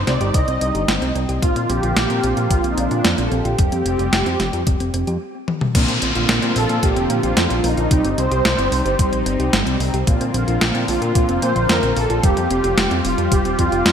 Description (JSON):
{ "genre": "synthwave", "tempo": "111 BPM", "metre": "4/4", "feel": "straight", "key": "Bb major", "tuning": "A4 = 438 Hz", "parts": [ { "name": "soft supersaw", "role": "melody", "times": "0.0-13.9 s", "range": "D4 to Eb5", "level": "-22 LUFS", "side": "right 1 dB", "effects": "ping-pong delay" }, { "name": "warm analog pad", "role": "sustained chords", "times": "0.0-13.9 s", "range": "D3 to F4", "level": "-26 LUFS", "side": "left 1 dB", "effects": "chorus, sidechain pumping" }, { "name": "fat analog bass", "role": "bass", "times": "0.0-13.9 s", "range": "Eb1 to Bb2", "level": "-22 LUFS", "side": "equal", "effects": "tube saturation" }, { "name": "thumb-piano-like synth pluck", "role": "arpeggios", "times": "0.1-13.9 s", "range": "G3 to G4", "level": "-26 LUFS", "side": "right 2 dB", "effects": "chorus, ping-pong delay" }, { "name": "clean 12-bit digital drum machine", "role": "drums", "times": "0.1-13.9 s", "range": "crash cymbal, hi-hat, snare drum, toms", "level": "-22 LUFS", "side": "equal", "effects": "overdrive, gated reverb" }, { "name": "electronic kick drum", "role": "drums", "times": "0.3-13.7 s", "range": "none", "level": "-18 LUFS", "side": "equal", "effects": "overdrive" }, { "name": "mellow synth brass", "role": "stabs", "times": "5.7-13.9 s", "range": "G3 to G4", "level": "-27 LUFS", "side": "left 2 dB", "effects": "chorus" }, { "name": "downlifter", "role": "sound effects", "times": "5.7-10.1 s", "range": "none", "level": "-27 LUFS", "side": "left 1 dB", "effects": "none" } ], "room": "moderate lush hall reverb, RT60 2.4 s", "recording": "bright 1980s-style digital production", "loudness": "-16 LUFS", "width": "side -8 dB against mid", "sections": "0.0-5.7 A section; 5.7-13.9 B section", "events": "stop 5.2-5.7; drum fill 5.5", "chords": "0.0 Cm; 1.4 Bbadd9; 3.6 Fsus2; 5.7 Bbadd9; 7.9 Cm; 10.1 Bbadd9; 12.2 Fsus2", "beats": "0.34 0.88 | 1.42 1.97 2.51 3.05 | 3.59 4.13 4.67 5.21 | 5.75 6.29 6.83 7.37 | 7.91 8.45 8.99 9.53 | 10.07 10.61 11.15 11.70 | 12.23 12.78 13.32 13.86" }